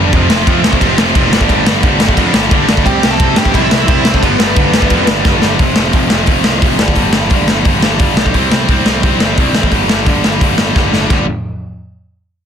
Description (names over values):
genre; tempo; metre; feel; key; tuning
punk rock; 175 BPM; 4/4; straight; G mixolydian; A4 = 440 Hz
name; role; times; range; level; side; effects
biting overdriven guitar; riff; 0.0-11.2 s; F2 to C4; -18 LUFS; right 15 dB; none
overdriven electric guitar; riff; 0.0-11.2 s; F2 to C4; -16 LUFS; left 16 dB; none
scooped high-gain guitar; riff; 0.0-5.6 s; F2 to C4; -20 LUFS; right 2 dB; distortion
fuzz picked electric bass; bass; 0.0-11.3 s; F1 to C3; -18 LUFS; equal; overdrive
raw garage drum kit; drums; 0.1-11.2 s; crash cymbal, hi-hat, kick drum, snare drum; -12 LUFS; equal; none
lead guitar through a small cranked amp; melody; 2.9-5.0 s; B3 to A5; -18 LUFS; right 1 dB; overdrive, tape echo
room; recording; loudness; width
little or no reverb; dense, heavily limited modern master; -9 LUFS; side -8 dB against mid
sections
0.0-5.6 A section; 5.6-11.1 B section; 11.1-12.5 C section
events
drum fill 5.3-5.6, 10.8-11.1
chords
0.1 F5; 1.3 G5; 2.9 C; 4.2 G; 5.6 F5; 6.8 G5; 8.3 C5; 9.7 G5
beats
| 0.13 0.47 0.81 1.15 | 1.50 1.84 2.18 2.52 | 2.86 3.20 3.54 3.88 | 4.22 4.57 4.91 5.25 | 5.59 5.94 6.28 6.62 | 6.97 7.31 7.66 8.00 | 8.34 8.69 9.03 9.38 | 9.72 10.07 10.41 10.76 | 11.10